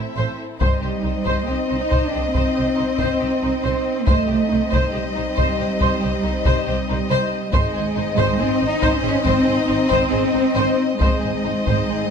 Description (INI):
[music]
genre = cinematic, epic orchestral film score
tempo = 69 BPM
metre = 4/4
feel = straight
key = unclear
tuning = A4 = 440 Hz
[part]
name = warm chamber violin section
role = melody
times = 0.0-12.1 s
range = Eb5 to E5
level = -28 LUFS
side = left 5 dB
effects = none
[part]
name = warm symphonic violin section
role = second line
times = 0.0-12.0 s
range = Eb4 to C5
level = -27 LUFS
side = left 2 dB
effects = none
[part]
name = warm symphonic viola section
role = accompaniment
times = 0.0-12.0 s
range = C5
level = -29 LUFS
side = equal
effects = none
[part]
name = warm symphonic string section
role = sustained chords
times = 0.0-12.1 s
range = C4 to Eb5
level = -27 LUFS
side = left 2 dB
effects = none
[part]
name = warm symphonic double bass section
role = bass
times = 0.0-12.0 s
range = G#1 to C2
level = -26 LUFS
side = right 4 dB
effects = none
[part]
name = dark French horn section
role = sustained chords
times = 0.6-12.1 s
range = G3 to Eb4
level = -26 LUFS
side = left 8 dB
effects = none
[part]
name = warm symphonic cello section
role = bass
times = 0.6-12.1 s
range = G3 to Eb4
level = -24 LUFS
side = right 4 dB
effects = none
[part]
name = taiko ensemble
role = drums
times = 0.6-12.1 s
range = none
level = -22 LUFS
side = left 1 dB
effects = none
[part]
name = reverse cymbal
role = sound effects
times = 11.0-12.1 s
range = none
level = barely audible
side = none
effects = none
[sound]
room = light reverb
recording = close, detailed microphones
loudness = -17 LUFS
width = side -6 dB against mid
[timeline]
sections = 0.0-12.1 A section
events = none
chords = 0.0 Am; 0.6 Cm; 7.5 G#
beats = | 0.61 1.49 2.36 3.22 | 4.09 4.95 5.82 6.67 | 7.54 8.40 9.26 10.12 | 11.01 11.90